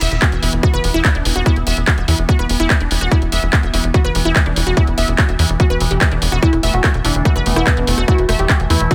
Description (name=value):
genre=psychedelic trance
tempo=145 BPM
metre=4/4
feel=straight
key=unclear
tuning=A4 = 435 Hz
part: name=pulsing gated texture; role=sustained chords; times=0.0-8.9 s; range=E3 to B3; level=-26 LUFS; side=equal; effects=chorus, built-in reverb, sidechain pumping
part: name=unison pluck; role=riff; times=0.0-8.9 s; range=D4 to E5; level=-24 LUFS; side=equal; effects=sidechain pumping, digital delay
part: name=tight sequencer bass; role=bass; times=0.0-8.9 s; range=E1 to E2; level=-20 LUFS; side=equal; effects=none
part: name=drum and bass drum kit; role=drums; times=0.0-8.9 s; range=handclaps, hi-hat, rim click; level=-22 LUFS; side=equal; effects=overdrive
part: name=electronic kick drum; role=drums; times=0.2-8.9 s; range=none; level=-16 LUFS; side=equal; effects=overdrive
part: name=unison lead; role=melody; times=6.4-8.9 s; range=B3 to G4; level=-22 LUFS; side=equal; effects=phaser, cassette tape, sidechain pumping, digital delay
room=digital ambience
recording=none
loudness=-15 LUFS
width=mono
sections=0.0-8.9 A section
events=none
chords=0.0 E5